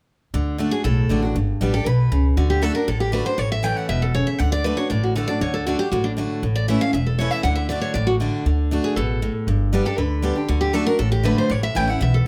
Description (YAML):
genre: bluegrass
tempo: 236 BPM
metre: 4/4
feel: straight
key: D major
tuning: A4 = 440 Hz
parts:
  - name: picked steel-string acoustic guitar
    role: accompaniment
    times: 0.3-12.3 s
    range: E2 to G4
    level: -26 LUFS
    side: equal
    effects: none
  - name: upright bass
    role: bass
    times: 0.3-12.2 s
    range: E1 to D2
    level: -24 LUFS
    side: equal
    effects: none
  - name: picked steel-string acoustic guitar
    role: melody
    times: 0.7-12.3 s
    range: D4 to G5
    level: -27 LUFS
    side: equal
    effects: none
room: light reverb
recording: none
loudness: -21 LUFS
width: mono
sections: 0.3-8.5 A section; 8.5-12.3 A section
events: none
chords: 0.3 D; 1.4 G; 2.4 D; 3.4 A; 4.4 D; 6.4 A; 7.4 D; 9.5 G; 10.5 D; 11.5 A